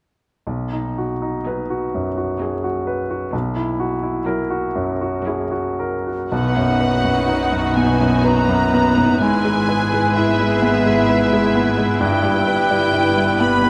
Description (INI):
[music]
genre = classical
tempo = 54-66 BPM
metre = 3/4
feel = rubato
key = B major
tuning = A4 = 440 Hz
[part]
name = clear grand piano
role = melody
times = 0.5-13.7 s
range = B1 to B4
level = -21 LUFS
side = equal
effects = none
[part]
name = clear studio cello section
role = bass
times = 0.5-13.7 s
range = G2 to B2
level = -28 LUFS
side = equal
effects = none
[part]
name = rich studio viola section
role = accompaniment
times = 1.5-13.7 s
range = F#3 to E4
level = -29 LUFS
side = equal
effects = none
[part]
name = clear studio violin section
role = melody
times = 6.3-13.7 s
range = E5 to B5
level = -28 LUFS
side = equal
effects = none
[part]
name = clear clarinet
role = second line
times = 6.3-13.6 s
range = D#4 to E4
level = -31 LUFS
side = equal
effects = none
[part]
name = clear oboe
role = second line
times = 6.3-13.7 s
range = B4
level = -27 LUFS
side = equal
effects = none
[part]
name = hollow concert flute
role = second line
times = 6.3-13.7 s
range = E5 to B5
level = -26 LUFS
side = equal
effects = none
[part]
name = rich studio violin section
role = second line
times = 6.3-13.7 s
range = E4 to B4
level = -30 LUFS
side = equal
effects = none
[part]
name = rich studio double bass section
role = bass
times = 6.3-13.7 s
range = G1 to B1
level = -28 LUFS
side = equal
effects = none
[part]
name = timpani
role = percussion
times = 6.3-7.7 s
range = B2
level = -30 LUFS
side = equal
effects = none
[sound]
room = moderate concert hall reverb, RT60 2.0 s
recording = none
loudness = -19 LUFS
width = mono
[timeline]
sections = 0.5-6.3 A section; 6.3-13.7 B section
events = none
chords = 0.5 B; 3.3 F#7/B; 6.3 B; 9.2 E/G#; 12.0 Em/G